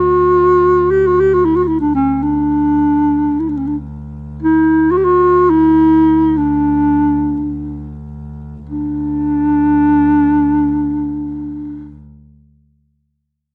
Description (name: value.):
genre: Arabic maqam ensemble.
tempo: free time.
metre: none.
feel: none.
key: unclear.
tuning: A4 = 441 Hz.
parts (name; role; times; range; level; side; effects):
breathy clarinet; melody; 0.0-12.0 s; C#4-48c to G4-36c; -14 LUFS; equal; none.
warm double bass; drone; 0.0-12.0 s; D2; -29 LUFS; equal; none.
room: little or no reverb.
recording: recorded outdoors, with no room sound, nothing above 10.3 kHz.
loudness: -13 LUFS.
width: mono.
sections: 0.0-8.7 A section; 8.7-11.3 B section.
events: none.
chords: none.